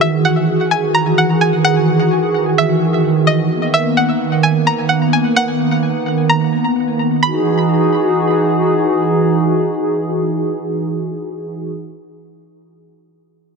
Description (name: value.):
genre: hip hop.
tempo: 129 BPM.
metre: 4/4.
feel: half-time.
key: E lydian.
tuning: A4 = 441 Hz.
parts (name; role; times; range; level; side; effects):
string-like resonator pluck; melody; 0.0-8.6 s; D#5 to B5; -18 LUFS; equal; chorus, low-pass filter, tape echo.
hollow soft pad; sustained chords; 0.0-11.7 s; D#3 to G#4; -14 LUFS; right 1 dB; chorus.
room: light reverb.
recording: dense, heavily limited modern master.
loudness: -13 LUFS.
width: side -4 dB against mid.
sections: 0.0-7.2 A section; 7.2-10.9 B section.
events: none.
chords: 0.0 Emaj9; 3.5 Bmaj7; 7.2 Emaj9.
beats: 0.25 0.71 1.18 | 1.64 2.11 2.57 3.04 | 3.50 3.97 4.43 4.90 | 5.37 5.83 6.29 6.76 | 7.23 7.69 8.16 8.62 | 9.09 9.55 10.02 10.48.